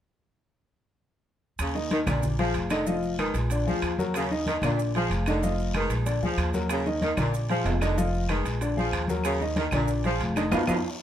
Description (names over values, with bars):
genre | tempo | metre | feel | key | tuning
latin, salsa | 188 BPM | 4/4 | straight | Eb harmonic minor | A4 = 440 Hz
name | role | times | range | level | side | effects
edgy saxophone section | second line | 1.6-10.8 s | Bb2 to F3 | -31 LUFS | right 1 dB | slapback echo
upright bass | bass | 1.6-10.8 s | F1 to F2 | -29 LUFS | equal | none
claves | percussion | 1.6-10.8 s | none | -39 LUFS | left 2 dB | none
congas | percussion | 1.6-10.8 s | none | -33 LUFS | left 1 dB | none
guiro | percussion | 1.6-10.8 s | none | -43 LUFS | left 4 dB | none
maracas | percussion | 1.6-10.8 s | none | -46 LUFS | right 6 dB | none
timbales | percussion | 1.6-10.8 s | none | -36 LUFS | right 5 dB | none
clear concert grand piano | accompaniment | 1.7-10.8 s | D3 to Eb5 | -28 LUFS | left 2 dB | none
room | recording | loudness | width
light reverb | none | -24 LUFS | side -10 dB against mid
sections
1.6-11.0 A section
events
band accent 10.5-11.0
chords
1.6 Eb5; 2.2 Bb7; 2.9 Fm7b5; 3.5 Bb7; 4.1 Ebm7; 4.8 Bb7; 5.4 Fm7b5; 6.1 Bb7; 6.7 Ebm7; 7.3 Bb7; 8.0 Fm7b5; 8.6 Bb7; 9.3 Ebm7; 9.9 Bb7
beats
| 1.59 1.91 2.23 2.55 | 2.87 3.19 3.51 3.83 | 4.14 4.46 4.78 5.10 | 5.42 5.74 6.06 6.38 | 6.70 7.02 7.34 7.66 | 7.98 8.29 8.61 8.93 | 9.25 9.57 9.89 10.21 | 10.53